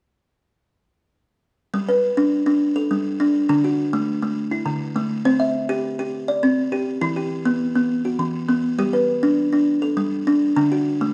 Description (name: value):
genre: southern african traditional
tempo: 136 BPM (dotted quarters)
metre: 12/8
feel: straight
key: G major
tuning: A4 = 439 Hz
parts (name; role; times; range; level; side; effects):
- buzzing kalimba; arpeggios; 1.7-11.1 s; D3 to E5; -21 LUFS; equal; none
room: moderate recital hall reverb, RT60 1.5 s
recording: dark, warm production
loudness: -21 LUFS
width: mono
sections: 1.7-11.1 A section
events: none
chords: 1.7 G; 3.5 D; 5.3 C; 7.0 Em; 8.8 G; 10.6 D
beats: | 1.73 2.17 2.61 3.05 | 3.49 3.93 4.37 4.81 | 5.25 5.69 6.13 6.58 | 7.02 7.46 7.90 8.35 | 8.79 9.23 9.68 10.12 | 10.56 11.01